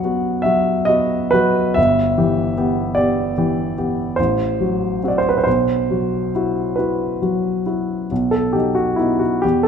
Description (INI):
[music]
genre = classical, romantic nocturne for solo piano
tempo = 44-51 BPM (dotted quarters)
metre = 9/8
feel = rubato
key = unclear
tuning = A4 = 439 Hz
[part]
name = warm baby grand piano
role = solo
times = 0.0-9.7 s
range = G1 to F#5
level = -16 LUFS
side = equal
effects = none
[sound]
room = moderate recital hall reverb, RT60 1.4 s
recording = dark, warm production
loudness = -16 LUFS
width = side -7 dB against mid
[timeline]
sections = 0.0-9.7 A section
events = none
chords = 0.0 B; 1.8 Em/G; 4.2 F#dim/A; 5.5 Bsus4; 8.1 B